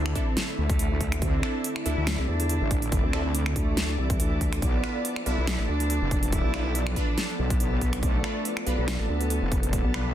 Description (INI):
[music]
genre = heavy wobble dubstep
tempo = 141 BPM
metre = 4/4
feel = swing 54% on 16ths, half-time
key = unclear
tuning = A4 = 440 Hz
[part]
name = warm cello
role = melody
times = 0.0-10.1 s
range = E3 to E4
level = -33 LUFS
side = right 1 dB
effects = ping-pong delay
[part]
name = lush unison pad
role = sustained chords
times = 0.0-10.1 s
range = D3 to E4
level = -36 LUFS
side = left 1 dB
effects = chorus, phaser, sidechain pumping
[part]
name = wobble bass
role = bass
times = 0.0-10.1 s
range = F1 to D2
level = -27 LUFS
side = equal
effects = chorus, overdrive
[part]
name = ethereal airy pad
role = texture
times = 0.0-10.1 s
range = E4 to D5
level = -36 LUFS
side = right 2 dB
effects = ensemble chorus, built-in reverb, sidechain pumping
[part]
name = big-room dance drum kit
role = drums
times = 0.1-10.0 s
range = finger snaps, hi-hat, snare drum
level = -32 LUFS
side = equal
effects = soft clipping on snare
[part]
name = supersaw stab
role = stabs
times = 0.2-10.1 s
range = D4 to B4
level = -37 LUFS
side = right 1 dB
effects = ping-pong delay
[part]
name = electronic kick drum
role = drums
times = 0.2-9.8 s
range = none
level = -27 LUFS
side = equal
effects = none
[part]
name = vowel-sweep wobble bass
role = bass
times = 1.9-9.9 s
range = A1 to E2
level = -27 LUFS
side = equal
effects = chorus, overdrive
[sound]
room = light reverb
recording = dense, heavily limited modern master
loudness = -24 LUFS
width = side -11 dB against mid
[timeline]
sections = 0.0-10.1 A section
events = none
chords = 0.0 Dsus2; 4.6 Bdim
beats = 0.37 0.79 | 1.22 1.64 2.07 2.50 | 2.92 3.35 3.77 4.20 | 4.62 5.05 5.47 5.90 | 6.33 6.75 7.18 7.60 | 8.03 8.45 8.88 9.30 | 9.73